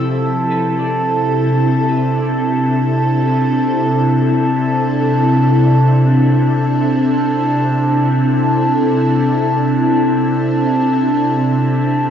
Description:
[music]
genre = ambient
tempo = free time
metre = none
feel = none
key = C major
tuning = A4 = 440 Hz
[part]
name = evolving wavetable pad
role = sustained chords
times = 0.0-12.1 s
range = C3 to A4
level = -14 LUFS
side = equal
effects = ensemble chorus, built-in reverb, phaser
[part]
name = semi-hollow electric guitar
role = arpeggios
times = 0.0-0.5 s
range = B4 to D5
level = -40 LUFS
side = equal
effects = none
[part]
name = organ-like drone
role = drone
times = 0.0-12.1 s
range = C3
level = -20 LUFS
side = equal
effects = ensemble chorus, built-in reverb
[part]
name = glass harmonica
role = texture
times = 0.0-12.1 s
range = A5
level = -20 LUFS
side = equal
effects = none
[sound]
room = wet lush hall reverb, RT60 3.0 s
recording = dark, warm production, nothing above 7.5 kHz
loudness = -12 LUFS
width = side -8 dB against mid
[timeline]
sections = 0.0-12.1 A section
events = none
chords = 0.0 C6

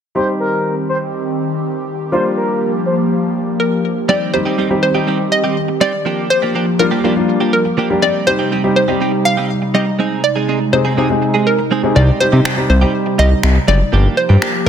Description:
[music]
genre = dance-pop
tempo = 122 BPM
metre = 4/4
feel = straight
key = C minor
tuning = A4 = 440 Hz
[part]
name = warm concert grand piano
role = accompaniment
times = 0.1-14.7 s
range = C3 to Ab4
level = -19 LUFS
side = left 1 dB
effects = none
[part]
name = expressive synth lead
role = melody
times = 0.2-2.9 s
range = Bb4 to C5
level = -20 LUFS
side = left 1 dB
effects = chorus, ping-pong delay
[part]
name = airy breathy pad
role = sustained chords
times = 0.2-14.7 s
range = C3 to G4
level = -19 LUFS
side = equal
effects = chorus
[part]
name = hollow square pluck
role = melody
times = 3.6-14.7 s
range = Bb4 to F5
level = -18 LUFS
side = equal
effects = chorus, ping-pong delay
[part]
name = direct-recorded clean electric guitar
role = riff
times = 4.1-14.7 s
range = F3 to Ab4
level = -20 LUFS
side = right 5 dB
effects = analog chorus
[part]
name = fat analog bass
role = bass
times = 12.0-14.7 s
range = F#1 to C3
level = -10 LUFS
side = equal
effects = none
[part]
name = electronic finger snaps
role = drums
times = 12.5-14.5 s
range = none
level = -21 LUFS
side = equal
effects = none
[sound]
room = light reverb, digital ambience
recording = none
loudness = -13 LUFS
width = side -8 dB against mid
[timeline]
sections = 0.2-4.1 A section; 4.1-14.7 B section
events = none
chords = 0.2 Cm; 2.1 Gm7; 4.1 Cm; 6.1 Gm7; 8.0 Cm; 10.0 Ab/C; 12.0 Cm; 13.9 Gm7

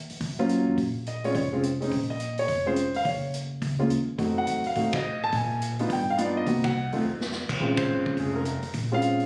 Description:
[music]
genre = jazz piano trio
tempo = 211 BPM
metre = 4/4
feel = swing 62% on 8ths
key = Bb minor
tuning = A4 = 440 Hz
[part]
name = upright bass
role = bass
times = 0.0-9.3 s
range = F1 to Bb2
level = -34 LUFS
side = equal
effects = none
[part]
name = vintage drum kit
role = drums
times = 0.1-9.2 s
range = crash cymbal, hi-hat, kick drum, ride cymbal, snare drum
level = -38 LUFS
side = equal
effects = none
[part]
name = warm concert grand piano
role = melody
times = 0.4-9.3 s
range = Gb3 to A5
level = -28 LUFS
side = equal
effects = none
[sound]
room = light reverb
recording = recorded on a phone in the room, studio reverb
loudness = -27 LUFS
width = mono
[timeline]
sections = 0.0-7.6 A section; 7.6-9.3 A section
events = band accent 4.9, 6.6, 7.7; drum fill 7.0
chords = 0.0 Ebm9 (rootless); 0.8 Bbmadd9; 3.1 Gb5; 4.2 F7b9; 5.3 Bb5; 5.9 G7b13; 6.5 Cm7b5; 7.0 N.C.; 7.6 Bbm9

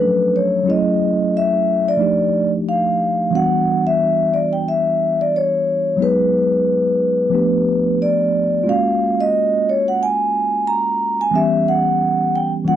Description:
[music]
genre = R&B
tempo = 90 BPM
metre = 4/4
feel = swing 56% on 16ths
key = unclear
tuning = A4 = 440 Hz
[part]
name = vibraphone with soft mallets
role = melody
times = 0.0-12.8 s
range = B4 to A#5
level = -17 LUFS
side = equal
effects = slapback echo
[part]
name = mellow tine electric piano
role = accompaniment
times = 0.0-12.8 s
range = E3 to A4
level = -19 LUFS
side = equal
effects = slow stereo tremolo
[sound]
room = little or no reverb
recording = dry, close 1970s-style studio recording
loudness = -15 LUFS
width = side -10 dB against mid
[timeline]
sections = 0.0-12.8 A section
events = none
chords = 0.0 Dmaj7; 0.7 F#m9; 2.0 F13; 3.3 Em9; 6.0 G#m7; 7.3 G9; 8.7 F#maj9; 11.3 C#m7b5

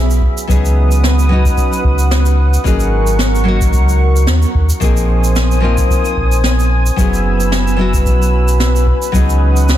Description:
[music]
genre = sunset chillout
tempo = 111 BPM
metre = 4/4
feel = swing 55% on 16ths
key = unclear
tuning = A4 = 440 Hz
[part]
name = nylon-string guitar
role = accompaniment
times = 0.0-9.8 s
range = F3 to Ab4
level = -19 LUFS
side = moving between left 4 dB and right 5 dB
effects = auto-pan, digital delay
[part]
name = lush unison pad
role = sustained chords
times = 0.0-9.8 s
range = Ab4 to Fb6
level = -20 LUFS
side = left 1 dB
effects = chorus, vintage 12-bit sampler grit
[part]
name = warm sub bass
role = bass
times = 0.0-9.8 s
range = Gb1 to Eb2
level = -12 LUFS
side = equal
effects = none
[part]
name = shaker and snare drum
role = drums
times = 0.1-9.8 s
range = none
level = -20 LUFS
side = right 1 dB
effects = none
[part]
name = electronic kick drum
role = drums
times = 0.2-9.3 s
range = none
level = -16 LUFS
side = equal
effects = none
[sound]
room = studio reverb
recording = dense, heavily limited modern master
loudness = -10 LUFS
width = side -12 dB against mid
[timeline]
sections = 0.0-9.8 A section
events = none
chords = 0.5 Db9sus4; 2.7 Ab9sus4; 4.8 Bb9sus4; 7.0 Gb9sus4; 9.1 Db9sus4

